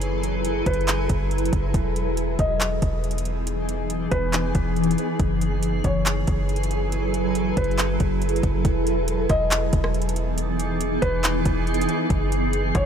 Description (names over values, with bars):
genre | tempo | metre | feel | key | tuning
hip hop, atmospheric cloud-rap | 139 BPM | 4/4 | half-time | E major | A4 = 444 Hz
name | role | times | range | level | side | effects
granular cloud pad | sustained chords | 0.0-12.9 s | E3 to B4 | -25 LUFS | equal | built-in reverb, sidechain pumping
soft 808-style bass | bass | 0.0-12.9 s | E1 to F#1 | -25 LUFS | equal | none
smooth R&B drum kit | drums | 0.0-12.8 s | handclaps, hi-hat, kick drum, rim click | -25 LUFS | equal | overdrive
felt-muted upright piano | melody | 0.7-12.9 s | B4 to D#5 | -30 LUFS | left 1 dB | ping-pong delay
room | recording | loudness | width
light reverb | none | -20 LUFS | side -8 dB against mid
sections
0.0-8.6 A section; 8.6-12.9 B section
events
none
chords
0.0 F#m11; 1.7 Emaj7; 5.2 F#m11; 8.6 Emaj7; 12.1 F#m11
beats
| 0.02 0.45 0.88 1.31 | 1.74 2.17 2.61 3.04 | 3.47 3.90 4.33 4.76 | 5.20 5.63 6.06 6.49 | 6.92 7.35 7.79 8.22 | 8.65 9.08 9.51 9.94 | 10.38 10.81 11.24 11.67 | 12.10 12.53